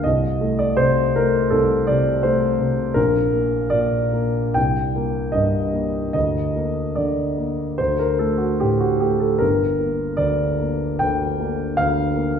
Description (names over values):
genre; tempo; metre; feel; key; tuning
classical, romantic character piece for solo piano; 69-84 BPM; 4/4; rubato; G minor; A4 = 440 Hz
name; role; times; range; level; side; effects
warm grand piano; solo; 0.0-12.4 s; G1 to G5; -18 LUFS; equal; none
room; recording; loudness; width
wet recital hall reverb, RT60 1.3 s; heard from further back in the room; -18 LUFS; side -7 dB against mid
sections
0.0-12.4 A section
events
none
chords
0.0 Cm13; 3.0 N.C.; 4.5 Cm7; 6.1 Bbadd11/D; 7.8 D5; 9.4 Gm